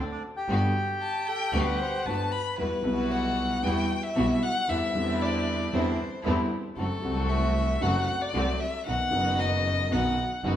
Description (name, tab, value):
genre	tango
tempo	115 BPM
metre	4/4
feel	rubato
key	E minor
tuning	A4 = 440 Hz
part	bandoneon	melody	0.0-2.0 s	D4 to G5	-32 LUFS	equal	none
part	warm concert grand piano	accompaniment	0.0-10.6 s	F#1 to F#4	-29 LUFS	equal	none
part	rich chamber string section	stabs	0.0-10.6 s	F#3 to F#4	-34 LUFS	equal	none
part	rich double bass	bass	0.0-10.6 s	F#1 to E2	-30 LUFS	right 1 dB	none
part	mellow concert flute	second line	1.0-2.6 s	G4 to C5	-34 LUFS	left 1 dB	none
part	warm violin	second line	1.0-10.4 s	A4 to B5	-30 LUFS	left 2 dB	none
room	wet stone room reverb, RT60 1.4 s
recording	band playing live in one room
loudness	-24 LUFS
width	side -10 dB against mid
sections	0.0-2.6 A section; 2.6-10.6 B section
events	violin solo 2.6-10.6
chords	0.5 Gmaj7; 2.6 Emadd9; 4.7 Cadd9/E; 6.8 F#dim; 8.9 B